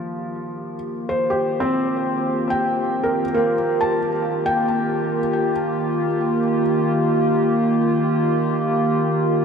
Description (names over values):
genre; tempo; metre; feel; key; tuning
ambient; 69 BPM; 4/4; straight; Eb lydian; A4 = 440 Hz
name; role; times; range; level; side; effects
warbly tape-like pad; sustained chords; 0.0-9.4 s; Eb3 to G4; -20 LUFS; equal; chorus, built-in reverb
felt-muted upright piano; arpeggios; 0.0-9.4 s; F3 to A5; -23 LUFS; equal; ping-pong delay
room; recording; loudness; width
wet huge ambient reverb, RT60 7.8 s; none; -18 LUFS; side -6 dB against mid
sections
0.0-9.4 A section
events
fade-in on ambient pad 0.0-9.4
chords
0.0 Eb